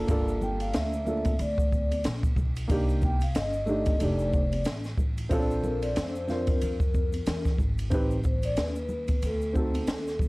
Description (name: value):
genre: hip hop, jazz-hop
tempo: 92 BPM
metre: 4/4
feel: swing 58% on 16ths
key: unclear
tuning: A4 = 438 Hz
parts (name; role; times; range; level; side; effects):
- dark upright piano; accompaniment; 0.0-10.0 s; A3 to C5; -30 LUFS; right 1 dB; none
- upright bass; bass; 0.0-10.3 s; F1 to F2; -31 LUFS; equal; transformer saturation
- open jazz drum kit; drums; 0.1-10.3 s; hi-hat, kick drum, ride cymbal, snare drum; -28 LUFS; equal; none
- egg shaker and congas; percussion; 0.1-10.3 s; none; -41 LUFS; left 1 dB; none
- vibraphone with soft mallets; melody; 0.4-10.2 s; A4 to G5; -32 LUFS; left 1 dB; none
room: little or no reverb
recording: dry, gritty hardware recording, vinyl crackle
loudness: -25 LUFS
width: side -23 dB against mid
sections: 0.0-10.3 A section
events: none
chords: 0.1 Gm9; 2.7 Cm7; 4.0 F13; 5.3 Bbmaj9; 7.9 Am7b5; 9.2 D7b9